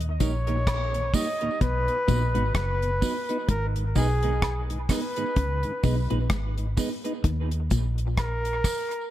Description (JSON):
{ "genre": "dub reggae", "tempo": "64 BPM", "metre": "4/4", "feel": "swing 58% on 16ths", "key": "G# minor", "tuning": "A4 = 440 Hz", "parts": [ { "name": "mellow tonewheel organ", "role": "accompaniment", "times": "0.0-7.1 s", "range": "D#2 to D#4", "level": "-37 LUFS", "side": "left 1 dB", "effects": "slow rotary speaker, dub echo" }, { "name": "vintage muted fingered electric bass", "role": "bass", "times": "0.0-8.6 s", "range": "F#1 to D#2", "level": "-26 LUFS", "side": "equal", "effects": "none" }, { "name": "deep reggae drum kit", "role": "drums", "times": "0.0-9.1 s", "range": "hi-hat, kick drum, rim click", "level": "-28 LUFS", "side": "equal", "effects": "none" }, { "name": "clear flugelhorn", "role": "melody", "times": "0.2-9.1 s", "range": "G#4 to D#5", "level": "-29 LUFS", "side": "equal", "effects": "dub echo" }, { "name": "clean electric guitar", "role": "accompaniment", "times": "0.2-7.1 s", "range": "A#3 to B4", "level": "-34 LUFS", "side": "right 6 dB", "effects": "wide subtle chorus, dub echo" }, { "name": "semi-hollow electric guitar", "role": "riff", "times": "0.2-8.0 s", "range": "F#2 to D#3", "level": "-34 LUFS", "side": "left 4 dB", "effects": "vibrato effect, dub echo" }, { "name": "tambourine and woodblock", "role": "percussion", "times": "0.2-8.9 s", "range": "none", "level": "-40 LUFS", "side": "right 5 dB", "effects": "dub echo" } ], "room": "little or no reverb", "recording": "echo-heavy mix", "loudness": "-23 LUFS", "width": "side -13 dB against mid", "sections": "0.0-9.1 A section", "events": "none", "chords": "0.0 D#; 1.6 B; 3.5 G#m; 7.2 D#5", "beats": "0.67 1.61 2.55 | 3.49 4.42 5.36 6.30 | 7.24 8.18" }